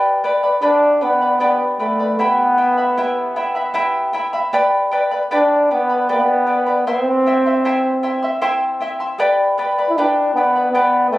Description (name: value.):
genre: andean folk, Andean ensemble.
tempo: 77 BPM.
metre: 3/4.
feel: straight.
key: unclear.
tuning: A4 = 441 Hz.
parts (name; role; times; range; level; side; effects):
charango; accompaniment; 0.0-11.2 s; E4 to C6; -17 LUFS; equal; none.
bright trombone; melody; 0.6-11.2 s; A3 to E4; -16 LUFS; equal; plate reverb, tape echo.
room: moderate small room reverb, RT60 0.6 s.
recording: recorded on a phone in the room, studio reverb, compression.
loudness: -14 LUFS.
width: side -16 dB against mid.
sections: 0.0-11.2 A section.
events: none.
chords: 0.0 G; 2.2 Em; 4.5 G; 6.9 C; 9.2 G.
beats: 0.63 1.41 | 2.19 2.97 3.75 | 4.53 5.31 6.09 | 6.87 7.64 8.42 | 9.20 9.97 10.75.